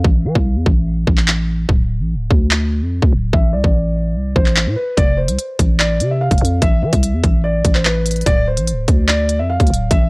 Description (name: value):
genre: hip hop, drill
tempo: 146 BPM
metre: 4/4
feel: half-time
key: A minor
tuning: A4 = 441 Hz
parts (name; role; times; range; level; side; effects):
- growling 808-style bass; bass; 0.0-10.1 s; D1 to E3; -17 LUFS; equal; none
- drill drum kit; drums; 0.0-10.0 s; handclaps, hi-hat, kick drum; -15 LUFS; equal; none
- dark concert grand piano; melody; 3.3-10.1 s; B4 to F5; -21 LUFS; equal; low-pass filter
room: little or no reverb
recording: dry, gritty hardware recording, transformer saturation, cassette tape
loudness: -13 LUFS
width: side -28 dB against mid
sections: 0.0-10.1 A section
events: break 0.0-5.0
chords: 0.0 Am; 1.7 N.C.; 3.3 Am; 5.0 F; 6.6 Amadd9; 8.3 Dm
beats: | 0.04 0.46 0.87 1.28 | 1.69 2.10 2.51 2.92 | 3.33 3.74 4.15 4.57 | 4.98 5.39 5.80 6.21 | 6.62 7.03 7.44 7.85 | 8.26 8.67 9.09 9.50 | 9.91